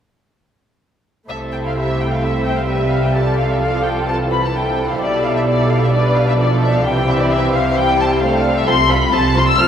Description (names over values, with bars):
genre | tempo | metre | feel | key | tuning
quick classical-period movement for string orchestra | 130 BPM | 4/4 | straight | C major | A4 = 440 Hz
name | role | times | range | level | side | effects
muted studio violin section | melody | 1.3-9.7 s | D5 to F6 | -19 LUFS | left 3 dB | none
muted studio violin section | second line | 1.3-9.7 s | G4 to E5 | -22 LUFS | left 1 dB | none
muted studio viola section | accompaniment | 1.3-9.7 s | D3 to G4 | -21 LUFS | right 1 dB | none
muted studio cello section | bass | 1.3-9.7 s | B2 to C3 | -22 LUFS | right 1 dB | none
muted studio double bass section | bass | 1.3-9.7 s | B1 to C2 | -20 LUFS | right 1 dB | none
room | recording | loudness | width
wet church reverb, RT60 3.5 s | recorded in a church or concert hall | -14 LUFS | side -8 dB against mid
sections
1.3-9.7 A section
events
none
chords
1.3 C; 3.1 Dm7/C; 5.0 G7/B; 6.8 C; 8.7 F/C